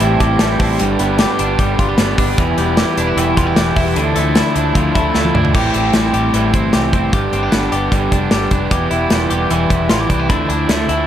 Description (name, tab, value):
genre	jangly indie pop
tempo	152 BPM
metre	4/4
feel	straight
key	A minor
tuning	A4 = 439 Hz
part	crunchy overdriven guitar	accompaniment	0.0-11.1 s	G2 to E4	-19 LUFS	right 8 dB	plate reverb
part	hollow soft pad	sustained chords	0.0-5.5 s	F3 to B5	-25 LUFS	equal	ensemble chorus, plate reverb
part	twelve-string electric guitar	arpeggios	0.0-11.1 s	E2 to G4	-18 LUFS	left 5 dB	plate reverb
part	vintage muted fingered electric bass	bass	0.0-11.1 s	E1 to D2	-21 LUFS	equal	none
part	modern studio drum kit	drums	0.0-11.0 s	crash cymbal, hi-hat, kick drum, snare drum, toms	-17 LUFS	equal	none
room	moderate studio ambience, RT60 0.5 s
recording	none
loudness	-13 LUFS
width	side -10 dB against mid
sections	0.0-5.5 A section; 5.5-11.1 B section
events	drum fill 5.2-5.5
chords	0.0 Am7; 0.8 G; 2.4 Em; 4.0 Dmadd9; 5.5 Am7; 7.1 G; 8.7 Em; 10.3 Dmadd9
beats	0.01 0.40 | 0.80 1.20 1.59 1.99 | 2.38 2.78 3.17 3.57 | 3.96 4.36 4.75 5.15 | 5.55 5.94 6.34 6.73 | 7.13 7.53 7.92 8.32 | 8.71 9.11 9.51 9.90 | 10.30 10.69